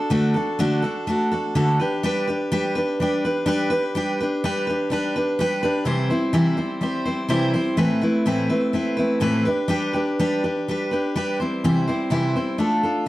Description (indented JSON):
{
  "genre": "rock",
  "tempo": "125 BPM",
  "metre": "4/4",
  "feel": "straight",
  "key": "C major from 5.9 s",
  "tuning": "A4 = 440 Hz",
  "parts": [
    { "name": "picked steel-string acoustic guitar", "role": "solo", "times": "0.0-13.1 s", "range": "A2 to C5", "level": "-20 LUFS", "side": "equal", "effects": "slapback echo" }
  ],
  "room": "moderate booth ambience, RT60 0.2 s",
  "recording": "dry, close 1970s-style studio recording",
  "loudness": "-20 LUFS",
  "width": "side -16 dB against mid",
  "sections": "0.0-5.9 A section; 5.9-13.1 B section",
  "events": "none",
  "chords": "0.0 D; 1.8 G; 5.9 C; 7.8 Amadd9; 9.5 G; 11.4 C"
}